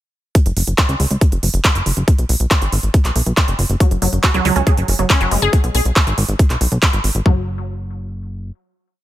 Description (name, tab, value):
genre	psychedelic trance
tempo	139 BPM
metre	4/4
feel	straight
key	unclear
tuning	A4 = 440 Hz
part	big-room dance drum kit	drums	0.3-7.2 s	handclaps, hi-hat	-20 LUFS	right 1 dB	overdrive
part	electronic kick drum	drums	0.3-7.4 s	none	-13 LUFS	equal	none
part	plucky analog bass	bass	0.5-8.5 s	F#1 to C#2	-18 LUFS	equal	tube saturation
part	wide unison pluck	riff	3.8-7.5 s	F#3 to G#4	-20 LUFS	moving between left 9 dB and right 3 dB	auto-pan, sidechain pumping, digital delay
room	little or no reverb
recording	none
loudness	-14 LUFS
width	side -14 dB against mid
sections	0.3-7.3 groove; 7.3-9.0 final chord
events	none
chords	0.3 F#5; 7.3 N.C.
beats	| 0.35 0.78 1.21 1.65 | 2.08 2.51 2.94 3.37 | 3.80 4.24 4.67 5.10 | 5.53 5.96 6.39 6.83 | 7.26 7.69 8.12